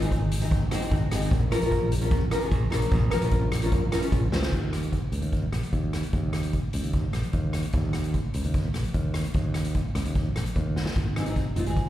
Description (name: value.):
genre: calypso.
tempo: 149 BPM.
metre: 4/4.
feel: straight.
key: unclear.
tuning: A4 = 437 Hz.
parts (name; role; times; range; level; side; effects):
nylon-string guitar; accompaniment; 0.0-4.5, 11.2-11.8 s; C4 to Eb5; -29 LUFS; left 1 dB; double-tracked left and right, slapback echo.
modern bright fingered electric bass; bass; 0.0-11.9 s; F1 to Eb2; -27 LUFS; equal; none.
street-band drum kit; drums; 0.0-11.9 s; hi-hat, kick drum, rim click, snare drum; -26 LUFS; equal; none.
room: small room ambience.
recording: live gig heard through the venue's PA, club reverb.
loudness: -24 LUFS.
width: side -13 dB against mid.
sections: 0.0-4.5 A section; 4.5-11.9 B section.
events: nylon-string guitar fill 0.5-1.3; drum fill 4.3, 10.8.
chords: 0.0 Ab; 1.3 Bbm; 4.5 Eb5; 11.0 Ab.